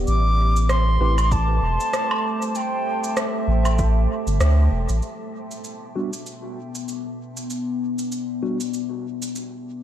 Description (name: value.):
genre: ambient dub.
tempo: 97 BPM.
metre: 4/4.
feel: swing 57% on 16ths.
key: E minor.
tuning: A4 = 440 Hz.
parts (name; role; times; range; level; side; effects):
deep dark ambient pad; sustained chords; 0.0-9.8 s; A3 to E5; -28 LUFS; left 1 dB; chorus, built-in reverb.
warm sub bass; bass; 0.0-5.0 s; E1 to D2; -18 LUFS; equal; none.
mellow silver concert flute; melody; 0.1-4.4 s; E5 to D6; -27 LUFS; equal; dub echo.
electronic cabasa, rim click and woodblock; drums; 0.1-9.5 s; none; -30 LUFS; right 1 dB; dub echo.
tine electric piano; stabs; 1.0-1.1, 6.0-8.6 s; G3 to B4; -31 LUFS; equal; overdrive, fast stereo tremolo, low-pass filter, dub echo.
electronic kick drum; drums; 1.3-3.9 s; none; -25 LUFS; equal; none.
room: light reverb, digital ambience.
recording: none.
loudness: -20 LUFS.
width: side -11 dB against mid.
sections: 0.0-5.0 A section; 5.0-9.8 B section.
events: band accent 4.4-4.7.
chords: 0.1 Am7; 5.0 Em7.